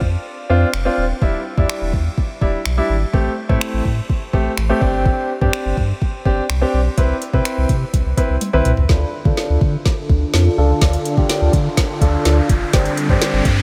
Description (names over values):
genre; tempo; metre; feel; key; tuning
dance-pop; 125 BPM; 4/4; straight; D dorian; A4 = 438 Hz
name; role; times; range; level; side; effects
clear baby grand piano; accompaniment; 0.0-13.5 s; G3 to C5; -24 LUFS; equal; sidechain pumping, low-pass filter
warm sub bass; bass; 0.0-13.6 s; Eb1 to D3; -20 LUFS; equal; sidechain pumping
smooth R&B drum kit; drums; 0.0-13.6 s; finger snaps, hi-hat, kick drum, snare drum, toms; -21 LUFS; equal; none
sweeping resonant pad; sustained chords; 8.9-13.6 s; D3 to A4; -25 LUFS; equal; chorus, sidechain pumping, low-pass filter
riser; sound effects; 10.5-13.6 s; none; -30 LUFS; equal; none
room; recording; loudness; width
light reverb, digital ambience; none; -17 LUFS; mono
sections
0.0-8.9 A section; 8.9-13.6 B section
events
kick muted 0.3-1.2; drum fill 8.4-8.9, 8.9-13.6; build-up 8.9-13.6; filter sweep 8.9-13.6; riser 10.5-13.6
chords
0.0 Dm7/F; 1.2 Em7; 3.1 Am7; 4.8 Gsus4; 7.0 Cmaj7; 8.9 Dm; 12.7 Gsus4